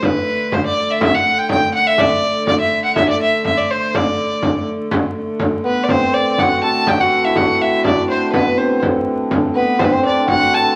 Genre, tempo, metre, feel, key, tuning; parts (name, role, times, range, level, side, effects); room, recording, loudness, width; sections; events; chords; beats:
medieval dance; 123 BPM; 2/4; straight; D mixolydian; A4 = 440 Hz
rich fiddle; melody; 0.0-10.8 s; B4 to A5; -19 LUFS; equal
rich hurdy-gurdy; drone; 0.0-10.8 s; D3 to A3; -27 LUFS; equal
frame drum; percussion; 0.0-10.5 s; -22 LUFS; equal
hammered dulcimer; second line; 5.6-10.8 s; B3 to A4; -19 LUFS; equal
wet studio reverb, RT60 0.8 s; vinyl crackle; -16 LUFS; mono
0.0-4.9 A section; 4.9-10.8 B section
| 0.04 0.52 | 1.01 1.50 | 1.99 2.47 | 2.96 3.45 | 3.94 4.42 | 4.91 5.40 | 5.89 6.38 | 6.86 7.35 | 7.84 8.33 | 8.81 9.30 | 9.79 10.28